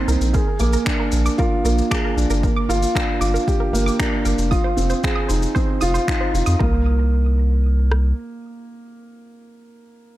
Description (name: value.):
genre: piano and strings electronica.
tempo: 115 BPM.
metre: 4/4.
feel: straight.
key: unclear.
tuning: A4 = 440 Hz.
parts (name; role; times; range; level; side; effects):
felt-muted upright piano; riff; 0.0-10.2 s; Bb3 to Ab4; -22 LUFS; right 1 dB; tape echo.
wide unison pluck; arpeggios; 0.1-6.8 s; Bb4 to Eb6; -30 LUFS; right 3 dB; sidechain pumping, tape echo.
round analog bass; bass; 0.1-8.1 s; F1 to F2; -18 LUFS; equal; tube saturation, sidechain pumping.
shaker and finger snaps; drums; 0.1-6.6 s; none; -28 LUFS; left 1 dB; none.
deep house drum kit; drums; 0.3-8.0 s; kick drum, rim click; -23 LUFS; equal; overdrive.
room: light reverb, studio reverb.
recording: dark, warm production.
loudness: -17 LUFS.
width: side -15 dB against mid.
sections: 0.0-6.6 A section; 6.6-10.2 B section.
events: drop 0.0-6.6.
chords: 0.3 Bb7; 2.4 Gm7; 4.5 Fm7; 6.6 Bbsus2/C.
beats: | 0.34 0.87 1.39 1.91 | 2.43 2.95 3.48 4.00 | 4.52 5.04 5.56 6.08 | 6.61 7.13 7.65 8.17 | 8.69 9.21 9.74.